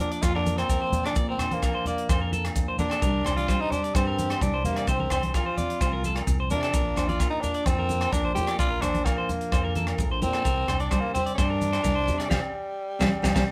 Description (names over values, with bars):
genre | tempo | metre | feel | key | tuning
highlife guitar band | 129 BPM | 4/4 | straight | Bb major | A4 = 438 Hz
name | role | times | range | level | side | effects
growling tenor saxophone | melody | 0.0-13.5 s | G3 to G4 | -31 LUFS | equal | none
fingerpicked steel-string acoustic guitar | accompaniment | 0.0-13.4 s | G2 to Bb4 | -36 LUFS | equal | none
electric guitar at the edge of break-up | arpeggios | 0.0-13.4 s | F4 to F5 | -34 LUFS | equal | none
tight funk drum kit | drums | 0.0-13.5 s | hi-hat, kick drum, rim click, snare drum | -31 LUFS | equal | none
fingered electric bass | bass | 0.2-13.4 s | Bb1 to C3 | -32 LUFS | equal | none
agogo bells | percussion | 0.2-13.5 s | none | -40 LUFS | equal | none
maracas | percussion | 0.2-13.5 s | none | -44 LUFS | equal | none
congas | percussion | 0.5-13.5 s | none | -35 LUFS | equal | none
room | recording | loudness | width
light reverb | band playing live in one room | -26 LUFS | mono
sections
0.0-13.5 A section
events
band accent 12.3-13.5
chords
0.0 Bb; 3.0 Csus2; 4.9 Fsus2/C; 6.7 Bb; 10.5 Csus2; 12.3 Fsus2/C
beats
0.23 0.69 | 1.16 1.62 2.09 2.55 | 3.02 3.48 3.95 4.41 | 4.88 5.34 5.81 6.27 | 6.74 7.20 7.67 8.13 | 8.60 9.06 9.52 9.99 | 10.45 10.92 11.38 11.85 | 12.31 12.78 13.24